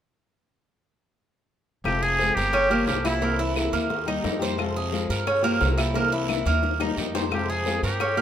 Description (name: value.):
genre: latin, Cuban son and guajira.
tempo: 176 BPM.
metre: 4/4.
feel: straight.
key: F minor.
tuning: A4 = 440 Hz.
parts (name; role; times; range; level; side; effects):
flamenco guitar; accompaniment; 1.8-8.2 s; C3 to G4; -29 LUFS; left 5 dB; none.
upright bass; bass; 1.8-8.2 s; F1 to G2; -29 LUFS; equal; none.
trumpet with straight mute; melody; 1.9-3.4, 7.3-8.2 s; E4 to Ab4; -25 LUFS; equal; none.
bongos; percussion; 1.9-8.2 s; none; -33 LUFS; left 6 dB; none.
claves; percussion; 1.9-8.2 s; none; -34 LUFS; left 7 dB; none.
guiro; percussion; 1.9-8.2 s; none; -36 LUFS; right 5 dB; none.
Cuban tres; arpeggios; 2.0-8.2 s; Bb3 to C5; -26 LUFS; right 4 dB; none.
room: moderate plate reverb, RT60 3.0 s.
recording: minimal, uncompressed stereo recording.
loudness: -22 LUFS.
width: side -9 dB against mid.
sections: 1.9-8.2 A section.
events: drum fill 6.0-7.3.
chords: 1.9 Fm; 2.5 Gm7b5; 3.2 C7; 3.9 Eb; 4.6 Fm; 5.3 Gm7b5; 6.0 C7; 6.6 Eb; 7.3 Fm.